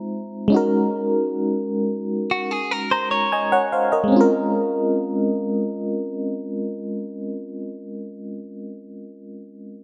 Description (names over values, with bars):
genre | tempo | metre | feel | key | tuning
R&B | 75 BPM | 4/4 | straight | Bb minor | A4 = 439 Hz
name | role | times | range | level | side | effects
FM electric piano with tremolo | accompaniment | 0.0-9.8 s | Ab3 to Bb5 | -23 LUFS | equal | none
direct-recorded clean electric guitar | arpeggios | 2.3-4.1 s | Gb4 to Db5 | -25 LUFS | equal | digital delay
room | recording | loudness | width
moderate plate reverb, RT60 2.3 s | bright 1980s-style digital production | -22 LUFS | mono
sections
0.0-4.1 A section; 4.1-7.3 B section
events
FM electric piano fill 2.5-4.1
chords
0.0 Fm7; 0.5 Gb6; 4.1 Bbm9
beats
0.11 | 0.91 1.71 2.51 3.31 | 4.11 4.91 5.71 6.51